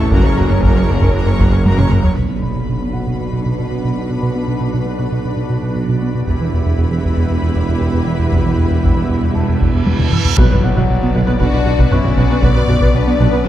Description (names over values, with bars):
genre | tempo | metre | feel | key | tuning
cinematic, hybrid orchestral and electronic film score | 117 BPM | 4/4 | straight | B minor | A4 = 440 Hz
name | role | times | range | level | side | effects
warm studio violin section | melody | 0.0-1.9, 10.4-13.5 s | A4 to D5 | -28 LUFS | left 5 dB | low-pass filter
bright symphonic violin section | second line | 0.0-13.5 s | D4 to C#6 | -28 LUFS | left 2 dB | none
rich symphonic viola section | accompaniment | 0.0-13.5 s | A#3 to B4 | -26 LUFS | equal | low-pass filter
organ-like drone | sustained chords | 0.0-13.5 s | D3 to C#5 | -25 LUFS | left 1 dB | ensemble chorus, built-in reverb, low-pass filter
round analog bass | riff | 0.0-13.5 s | E2 to B3 | -18 LUFS | right 1 dB | low-pass filter
mellow tuba | bass | 0.0-13.5 s | E1 to B1 | -24 LUFS | right 2 dB | none
rich symphonic cello section | bass | 0.0-13.5 s | E2 to B2 | -25 LUFS | right 2 dB | none
snarling distorted saw bass | bass | 0.0-2.2, 10.4-13.5 s | F#1 to B1 | -21 LUFS | equal | distortion
warm symphonic double bass section | bass | 0.0-13.5 s | E1 to B1 | -24 LUFS | right 3 dB | none
warm grand piano | texture | 0.0-13.5 s | F#4 to C#6 | -33 LUFS | left 1 dB | none
warm French horn section | sustained chords | 0.1-13.5 s | F#3 to G4 | -25 LUFS | left 5 dB | low-pass filter
taiko ensemble | drums | 0.1-3.2, 6.3-13.5 s | none | -17 LUFS | equal | none
impact and reverse cymbal | sound effects | 2.2-4.2, 9.5-12.4 s | none | -25 LUFS | right 1 dB | none
room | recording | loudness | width
moderate concert hall reverb, RT60 2.0 s | dark, warm production | -13 LUFS | side -12 dB against mid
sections
0.0-2.2 A section; 2.2-10.4 B section; 10.4-13.5 C section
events
drum fill 1.7-2.2, 9.9-10.4; impact 2.2-4.2, 10.4-12.4; filter sweep 2.2-10.4; reverse cymbal 9.5-10.4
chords
0.1 F#; 2.2 Bm; 6.3 Em; 10.4 Bm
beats
| 0.12 0.63 1.14 1.66 | 2.17 2.68 3.19 3.71 | 4.22 4.73 5.25 5.76 | 6.27 6.78 7.30 7.81 | 8.32 8.83 9.35 9.86 | 10.37 10.89 11.40 11.91 | 12.42 12.94 13.45